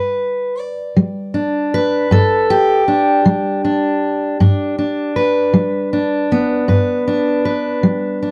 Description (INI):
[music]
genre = acoustic country blues, solo or duo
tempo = 52 BPM (dotted quarters)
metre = 12/8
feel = straight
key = G major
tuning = A4 = 440 Hz
[part]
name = fingerpicked steel-string acoustic guitar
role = solo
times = 0.0-8.3 s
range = G2 to D5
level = -16 LUFS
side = equal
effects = none
[sound]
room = moderate booth ambience, RT60 0.3 s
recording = dry, close 1970s-style studio recording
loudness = -16 LUFS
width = mono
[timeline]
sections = 0.0-8.3 A section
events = none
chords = 0.0 G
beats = 0.96 2.11 3.25 | 4.40 5.55 6.69 7.83